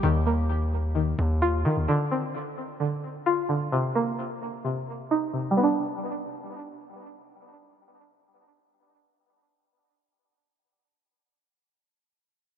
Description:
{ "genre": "hip hop, trap", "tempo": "130 BPM", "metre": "4/4", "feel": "half-time", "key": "unclear", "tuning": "A4 = 440 Hz", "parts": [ { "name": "string-like resonator pluck", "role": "arpeggios", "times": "0.0-10.1 s", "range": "C3 to F4", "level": "-26 LUFS", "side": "equal", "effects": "chorus, low-pass filter, tape echo" }, { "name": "distorted 808-style bass", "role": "bass", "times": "0.0-1.9 s", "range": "Eb2 to Eb3", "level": "-24 LUFS", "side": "equal", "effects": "distortion" } ], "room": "light reverb", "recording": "none", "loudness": "-24 LUFS", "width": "side -9 dB against mid", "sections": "0.0-5.6 A section; 5.6-9.3 B section", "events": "filter sweep on synth pluck 0.0-5.6", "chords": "0.0 Ebsus2; 1.9 Dm7; 3.7 Cm7; 5.6 G" }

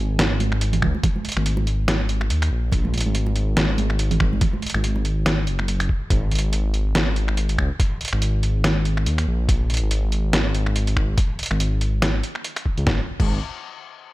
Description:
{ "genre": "deep dubstep", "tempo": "142 BPM", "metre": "4/4", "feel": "swing 56% on 16ths, half-time", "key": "unclear", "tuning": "A4 = 440 Hz", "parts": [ { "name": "dark detuned saw bass", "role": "bass", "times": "0.0-13.4 s", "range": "F#1 to D#2", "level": "-21 LUFS", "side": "equal", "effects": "none" }, { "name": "trip hop sampler-style drum kit", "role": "drums", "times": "0.2-13.3 s", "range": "crash cymbal, finger snaps, hi-hat, snare drum", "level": "-24 LUFS", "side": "equal", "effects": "overdrive" }, { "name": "congas", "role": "percussion", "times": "0.4-5.7 s", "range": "none", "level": "-28 LUFS", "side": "right 5 dB", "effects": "none" }, { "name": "electronic kick drum", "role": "drums", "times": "0.8-13.3 s", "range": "none", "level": "-22 LUFS", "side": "equal", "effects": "overdrive" } ], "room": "digital ambience", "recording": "none", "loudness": "-19 LUFS", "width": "side -18 dB against mid", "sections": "0.0-12.9 A section; 12.9-14.1 B section", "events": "none", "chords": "none" }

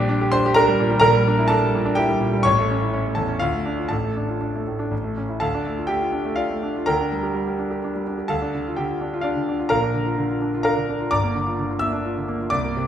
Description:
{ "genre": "classical, virtuoso piano study", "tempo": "127 BPM", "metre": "3/4", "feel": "rubato", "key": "D minor", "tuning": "A4 = 439 Hz", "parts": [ { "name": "clear concert grand piano", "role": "solo", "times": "0.0-12.9 s", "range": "G1 to E6", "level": "-19 LUFS", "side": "equal", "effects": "none" } ], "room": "moderate recital hall reverb, RT60 1.5 s", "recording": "recorded in a church or concert hall", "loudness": "-19 LUFS", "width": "side -9 dB against mid", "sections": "0.0-5.4 A section; 5.4-12.9 B section", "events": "none", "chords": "0.0 Gm/Bb; 1.0 Em7b5/Bb; 2.4 A; 3.4 Dm; 3.9 Dm/A; 4.9 A; 5.4 Dm; 6.9 Gm/D; 8.3 Dm; 9.7 Bb; 11.1 Gm7" }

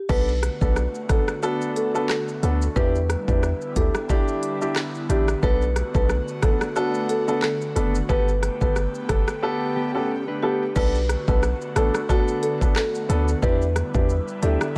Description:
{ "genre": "dancehall", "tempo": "90 BPM", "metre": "4/4", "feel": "swing 56% on 16ths", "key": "B minor", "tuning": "A4 = 440 Hz", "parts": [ { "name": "marimba with medium mallets", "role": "melody", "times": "0.1-14.7 s", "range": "F#4 to B4", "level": "-29 LUFS", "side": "equal", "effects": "delay" }, { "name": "warm grand piano", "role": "accompaniment", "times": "0.1-14.8 s", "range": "B3 to A4", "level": "-29 LUFS", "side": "equal", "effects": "sidechain pumping" }, { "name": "airy breathy pad", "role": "sustained chords", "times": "0.1-14.8 s", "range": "D3 to G4", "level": "-35 LUFS", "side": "equal", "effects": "chorus, phaser, sidechain pumping" }, { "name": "warm 808-style bass", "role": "bass", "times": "0.1-14.6 s", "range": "F#1 to E2", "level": "-26 LUFS", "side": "equal", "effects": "none" }, { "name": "island pop drum kit", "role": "drums", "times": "0.1-14.7 s", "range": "crash cymbal, handclaps, hi-hat, kick drum, rim click, shaker", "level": "-27 LUFS", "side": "equal", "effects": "none" }, { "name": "mellow electric guitar", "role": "arpeggios", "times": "9.8-10.7 s", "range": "B3 to B4", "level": "-31 LUFS", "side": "equal", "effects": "none" } ], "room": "little or no reverb", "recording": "none", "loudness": "-23 LUFS", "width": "mono", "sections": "0.1-10.8 A section; 10.8-14.8 B section", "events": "none", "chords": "0.1 Bm7; 2.8 Em7; 5.4 Bm7; 8.1 Gadd9; 10.8 Bm7; 13.4 Em7" }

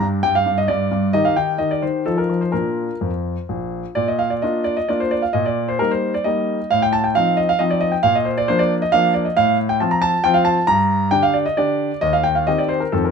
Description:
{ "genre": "classical-period piano sonatina", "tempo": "125-138 BPM", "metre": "3/4", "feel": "rubato", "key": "Bb major", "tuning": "A4 = 439 Hz", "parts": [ { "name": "clear grand piano", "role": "solo", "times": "0.0-13.1 s", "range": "Bb1 to Bb5", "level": "-16 LUFS", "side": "equal", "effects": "none" } ], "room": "light reverb", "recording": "none", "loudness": "-16 LUFS", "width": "side -6 dB against mid", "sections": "0.0-4.0 A section; 4.0-13.1 A section", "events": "none", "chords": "0.0 G5; 1.1 Ebmaj13; 2.1 F7; 2.5 Bb; 5.3 Eb/Bb; 6.7 F7/A; 8.0 Bb; 9.4 F/A; 10.7 Gm; 12.0 Cm/Eb" }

